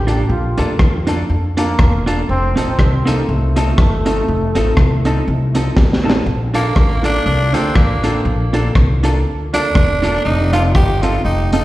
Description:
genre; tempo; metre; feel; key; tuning
ska; 121 BPM; 4/4; swing 56% on 8ths; Bb major; A4 = 440 Hz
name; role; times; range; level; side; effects
warm trombone; melody; 0.0-5.8 s; A3 to G4; -22 LUFS; equal; analog delay, plate reverb, slapback echo
upright bass; bass; 0.0-11.6 s; E1 to F2; -17 LUFS; equal; none
clean electric guitar; accompaniment; 0.1-11.6 s; C4 to A4; -22 LUFS; right 4 dB; harmonic tremolo, plate reverb, slapback echo
clear upright piano; stabs; 0.1-11.6 s; Bb3 to A4; -25 LUFS; left 2 dB; analog delay, plate reverb, slapback echo
crunchy breakbeat drum kit; drums; 0.1-11.6 s; hi-hat, kick drum, rim click, snare drum; -16 LUFS; equal; none
growling tenor saxophone; melody; 6.5-11.6 s; Bb3 to G4; -19 LUFS; right 1 dB; analog delay, plate reverb, slapback echo
room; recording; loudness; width
light reverb; live gig heard through the venue's PA, recital hall reverb; -13 LUFS; side -16 dB against mid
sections
0.0-6.3 A section; 6.3-11.6 B section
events
drum fill 5.8-6.3; tenor saxophone solo 6.3-11.6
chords
0.0 Bbmaj7; 2.3 F7; 6.3 Bbmaj7; 10.2 F7

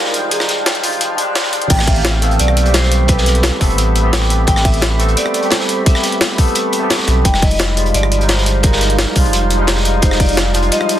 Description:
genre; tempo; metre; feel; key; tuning
liquid drum and bass; 173 BPM; 4/4; straight; A minor; A4 = 440 Hz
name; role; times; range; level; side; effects
vibraphone with medium mallets; melody; 0.0-11.0 s; Ab4 to G5; -22 LUFS; left 1 dB; dub echo
barky tine electric piano; accompaniment; 0.0-11.0 s; Eb3 to A4; -19 LUFS; equal; wide subtle chorus, digital delay
shimmering ambient pad; sustained chords; 0.0-11.0 s; Eb3 to B5; -24 LUFS; right 2 dB; chorus, built-in reverb, sidechain pumping
crunchy breakbeat drum kit; drums; 0.1-11.0 s; hi-hat, snare drum; -21 LUFS; equal; high-pass filter on hats, high-pass filter on snare, high-pass filter on room
jungle sampler-style drum kit; drums; 0.1-11.0 s; crash cymbal, hi-hat, rim click, snare drum; -19 LUFS; left 1 dB; none
warm sub bass; bass; 1.7-10.7 s; E1 to C2; -15 LUFS; equal; tube saturation
electronic kick drum; drums; 1.7-10.3 s; none; -13 LUFS; equal; none
room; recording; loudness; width
light reverb, small room ambience; dense, heavily limited modern master, high-pass filter; -12 LUFS; side -11 dB against mid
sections
0.0-1.7 A section; 1.7-11.0 B section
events
build-up 0.0-1.7; drop 1.7-11.0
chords
0.0 Fm9; 1.7 Am9; 7.3 Fm9

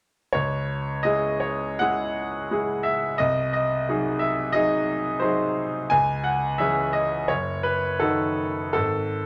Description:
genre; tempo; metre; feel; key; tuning
classical, romantic character piece for solo piano; 86 BPM; 4/4; uneven beats, rubato; C# minor; A4 = 441 Hz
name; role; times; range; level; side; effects
clear grand piano; solo; 0.3-9.3 s; F#1 to G#5; -24 LUFS; equal; none
room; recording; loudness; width
moderate studio reverb, RT60 0.7 s; none; -24 LUFS; mono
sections
0.3-9.3 A section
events
none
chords
0.3 C#m; 3.2 G#7/B#; 5.9 C#m; 7.3 D#dim/F#; 8.8 N.C.

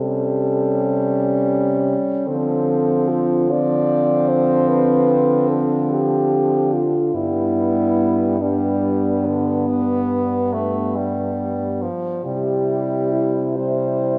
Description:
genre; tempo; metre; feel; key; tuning
classical, lyrical piece for horn quartet; 45-53 BPM (dotted quarters); 12/8; rubato; unclear; A4 = 439 Hz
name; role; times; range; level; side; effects
mellow French horn; melody; 0.0-14.2 s; D4 to D5; -24 LUFS; equal; none
warm French horn; second line; 0.0-14.2 s; B3 to E4; -25 LUFS; equal; none
clear French horn; accompaniment; 0.0-14.2 s; D3 to B3; -26 LUFS; equal; none
mellow French horn; bass; 0.0-14.2 s; G2 to D3; -26 LUFS; equal; none
room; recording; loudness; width
wet concert hall reverb, RT60 2.5 s; dark, warm production; -19 LUFS; mono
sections
0.0-14.2 A section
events
none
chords
0.0 A7/C; 2.3 Dm7; 7.1 G; 12.3 C

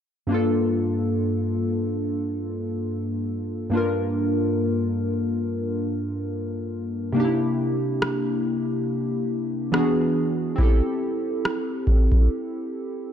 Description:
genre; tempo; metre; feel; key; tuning
contemporary R&B; 70 BPM; 4/4; swing 58% on 16ths; G dorian; A4 = 440 Hz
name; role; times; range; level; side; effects
warm analog keys; accompaniment; 0.3-13.1 s; G2 to Bb4; -23 LUFS; equal; chorus
booming analog drum machine; drums; 8.0-12.3 s; kick drum, rim click; -20 LUFS; equal; none
room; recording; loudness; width
light reverb, digital ambience; dark, warm production; -22 LUFS; side -9 dB against mid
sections
0.3-13.1 A section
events
break 12.3-13.1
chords
0.3 Gm7; 7.2 C7; 9.7 E7; 10.6 Am7

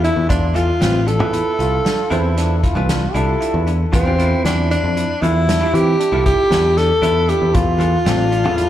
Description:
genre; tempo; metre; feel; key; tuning
progressive instrumental, band music in an uneven meter; 116 BPM; 7/4; straight; unclear; A4 = 441 Hz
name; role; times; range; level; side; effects
breathy tenor saxophone; melody; 0.0-8.7 s; C4 to A4; -18 LUFS; equal; slapback echo, ping-pong delay
vintage hollow-body jazz guitar; accompaniment; 0.0-8.7 s; E3 to C5; -24 LUFS; right 3 dB; slapback echo
bell-like tine electric piano; arpeggios; 0.0-8.7 s; C4 to F4; -27 LUFS; left 2 dB; slapback echo
picked electric bass; bass; 0.0-8.7 s; A1 to E3; -18 LUFS; equal; none
unplugged drum kit; drums; 0.0-8.7 s; hi-hat, kick drum, snare drum; -22 LUFS; equal; none
breathy flugelhorn; second line; 1.6-8.7 s; D4 to A4; -26 LUFS; left 3 dB; slapback echo, ping-pong delay
room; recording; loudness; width
light reverb, small room ambience; live gig heard through the venue's PA, club reverb; -14 LUFS; side -12 dB against mid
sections
0.0-8.7 A section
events
none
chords
0.0 Dmadd9

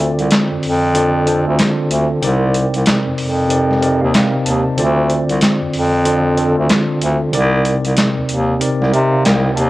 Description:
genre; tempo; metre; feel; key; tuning
hip hop, boom-bap hip-hop; 94 BPM; 4/4; swing 61% on 16ths; C dorian; A4 = 442 Hz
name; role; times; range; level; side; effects
tine electric piano; accompaniment; 0.0-9.7 s; C3 to A5; -16 LUFS; equal; medium stereo tremolo, high-pass filter, low-pass filter, cassette tape
bright bass clarinet; bass; 0.0-9.7 s; C2 to C3; -16 LUFS; equal; tube saturation
boom bap sampler-style drum kit; drums; 0.2-9.7 s; handclaps, hi-hat, snare drum; -17 LUFS; equal; overdrive, cassette tape
room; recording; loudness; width
light reverb; home recording on cassette; -13 LUFS; side -18 dB against mid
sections
0.0-9.7 A section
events
break 0.0-9.7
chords
0.0 Dm7; 2.2 Cm9; 4.8 Dm7; 7.3 Cm9

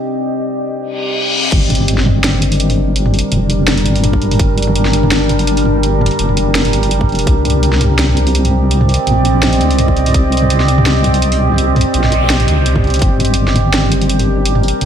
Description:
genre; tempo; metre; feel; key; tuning
half-time drum and bass; 167 BPM; 4/4; swing 55% on 16ths, half-time; G minor; A4 = 442 Hz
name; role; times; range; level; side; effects
deep dark ambient pad; sustained chords; 0.0-14.9 s; G3 to Eb5; -16 LUFS; right 1 dB; chorus, built-in reverb, sidechain pumping
reverse cymbal, impact and noise sweep; sound effects; 0.9-3.0, 11.8-13.0 s; none; -21 LUFS; left 2 dB; none
deep soft wobble bass; bass; 1.5-14.9 s; F1 to D2; -14 LUFS; equal; chorus
drum and bass drum kit; drums; 1.5-14.9 s; crash cymbal, hi-hat, snare drum, toms; -17 LUFS; equal; studio reverb
electronic kick drum; drums; 1.5-1.6, 4.1-4.5, 7.0-7.3, 9.9-10.2, 12.8-13.1 s; none; -14 LUFS; equal; studio reverb
room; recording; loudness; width
moderate lush hall reverb, RT60 1.6 s, digital ambience; dreamy mix soaked in reverb; -11 LUFS; side -9 dB against mid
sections
0.0-1.5 A section; 1.5-14.9 B section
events
break 0.1-1.5; reverse cymbal 0.9-1.5; drop 1.5-14.9; impact 1.5-3.0; noise sweep 11.8-13.0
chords
0.0 Cm; 1.5 Gm7; 7.3 Cm7; 13.0 Gm

